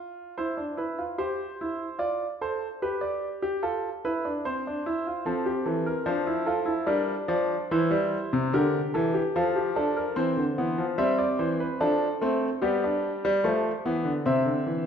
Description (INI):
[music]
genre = classical, baroque-style 3-part fugue for grand piano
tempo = 73 BPM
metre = 3/4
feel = straight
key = unclear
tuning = A4 = 440 Hz
[part]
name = warm concert grand piano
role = solo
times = 0.0-14.9 s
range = C3 to E5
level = -25 LUFS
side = equal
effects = none
[sound]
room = wet recital hall reverb, RT60 1.6 s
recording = minimal, uncompressed stereo recording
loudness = -25 LUFS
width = side -7 dB against mid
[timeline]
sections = 0.0-14.9 A section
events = none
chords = 0.4 C; 2.0 Dm/F; 2.8 G; 4.4 C; 5.3 F; 6.9 Gm; 7.7 C; 9.4 F; 10.2 C; 11.8 Dm/F; 12.6 G; 14.3 C